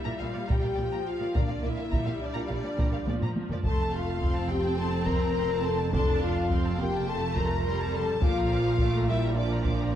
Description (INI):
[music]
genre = cinematic, epic orchestral film score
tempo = 105 BPM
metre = 4/4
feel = straight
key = unclear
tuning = A4 = 440 Hz
[part]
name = rich symphonic violin section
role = melody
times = 0.0-10.0 s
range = D5 to D6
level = -40 LUFS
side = left 1 dB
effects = none
[part]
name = warm symphonic violin section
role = second line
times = 0.0-10.0 s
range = Bb4 to Bb5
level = -36 LUFS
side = left 1 dB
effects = none
[part]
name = rich symphonic viola section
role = accompaniment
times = 0.0-9.9 s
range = F3 to D4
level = -36 LUFS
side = right 1 dB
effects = none
[part]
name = mellow French horn section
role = sustained chords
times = 0.0-9.9 s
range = D4 to Bb4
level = -31 LUFS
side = left 3 dB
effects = none
[part]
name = rich symphonic cello section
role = bass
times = 0.1-10.0 s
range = F2 to Bb2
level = -33 LUFS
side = right 2 dB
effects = none
[part]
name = dark symphonic double bass section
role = bass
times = 0.2-10.0 s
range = F1 to Bb1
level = -32 LUFS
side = right 3 dB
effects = none
[part]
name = taiko ensemble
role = drums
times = 0.5-10.0 s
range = none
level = -30 LUFS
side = equal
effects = none
[sound]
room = moderate scoring stage reverb, RT60 1.9 s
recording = dark, warm production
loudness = -25 LUFS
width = side -10 dB against mid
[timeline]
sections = 0.0-10.0 A section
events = drum fill 3.1-3.6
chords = 0.0 Bb; 3.6 F; 8.2 Bb